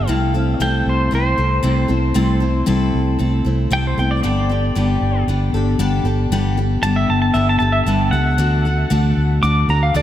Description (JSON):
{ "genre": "folk rock and heartland rock", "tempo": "116 BPM", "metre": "4/4", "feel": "straight", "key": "G major", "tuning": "A4 = 439 Hz", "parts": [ { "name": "pedal steel guitar", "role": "melody", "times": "0.0-10.0 s", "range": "C5 to D6", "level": "-22 LUFS", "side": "equal", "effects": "diffuse ambient delay" }, { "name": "picked steel-string acoustic guitar", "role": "accompaniment", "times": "0.0-10.0 s", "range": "C3 to A4", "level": "-19 LUFS", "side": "left 3 dB", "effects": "none" }, { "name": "fingered electric bass", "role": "bass", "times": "0.0-10.0 s", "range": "G1 to D2", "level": "-18 LUFS", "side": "right 1 dB", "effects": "none" } ], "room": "light reverb, small room ambience", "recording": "none", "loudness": "-15 LUFS", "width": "side -12 dB against mid", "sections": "0.0-10.0 A section", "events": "pedal steel guitar solo 0.0-10.0", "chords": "0.1 C6; 4.2 Gadd9; 8.4 D" }